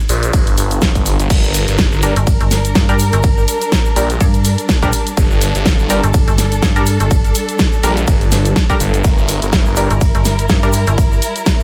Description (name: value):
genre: bass house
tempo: 124 BPM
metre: 4/4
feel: swing 56% on 16ths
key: G dorian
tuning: A4 = 440 Hz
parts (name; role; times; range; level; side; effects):
- phased detuned saw bass; bass; 0.1-9.9 s; G1 to Bb1; -19 LUFS; equal; phaser, sidechain pumping
- big-room dance drum kit; drums; 0.1-11.6 s; crash cymbal, hi-hat, ride cymbal, snare drum; -22 LUFS; equal; none
- egg shaker; percussion; 0.1-11.6 s; none; -30 LUFS; equal; none
- electronic kick drum; drums; 0.3-11.6 s; none; -17 LUFS; equal; none
- warm studio string section; sustained chords; 1.3-11.6 s; G3 to Bb4; -24 LUFS; equal; sidechain pumping
- band-passed chord stab; stabs; 2.0-10.7 s; G3 to Bb4; -24 LUFS; equal; chorus, sidechain pumping, tape echo
- metallic FM bass; bass; 2.2-11.2 s; G1 to G2; -18 LUFS; equal; overdrive, sidechain pumping
room: little or no reverb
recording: none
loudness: -14 LUFS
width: mono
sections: 0.0-11.6 A section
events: none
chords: 0.0 Gm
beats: 0.33 0.82 | 1.30 1.79 2.27 2.75 | 3.24 3.72 4.21 4.69 | 5.17 5.66 6.14 6.62 | 7.11 7.59 8.08 8.56 | 9.04 9.53 10.01 10.49 | 10.98 11.46